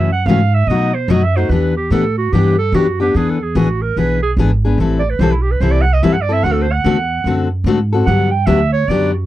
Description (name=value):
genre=acoustic string swing (jazz manouche)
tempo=146 BPM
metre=4/4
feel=swing 63% on 8ths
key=unclear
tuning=A4 = 440 Hz
part: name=clear clarinet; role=second line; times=0.0-9.3 s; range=E4 to G5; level=-19 LUFS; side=right 5 dB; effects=none
part: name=picked steel-string acoustic guitar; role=accompaniment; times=0.0-9.1 s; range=B2 to A4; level=-16 LUFS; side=left 4 dB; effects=none
part: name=upright bass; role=bass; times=0.0-9.3 s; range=G#1 to B2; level=-16 LUFS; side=right 1 dB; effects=none
room=little or no reverb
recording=dry, close 1970s-style studio recording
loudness=-12 LUFS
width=side -14 dB against mid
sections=0.0-9.3 A section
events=clarinet solo 0.0-9.3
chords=0.0 F#m7; 0.7 B7; 1.5 Em7; 3.1 E7; 4.8 Am7; 6.4 D7; 8.1 Gmaj7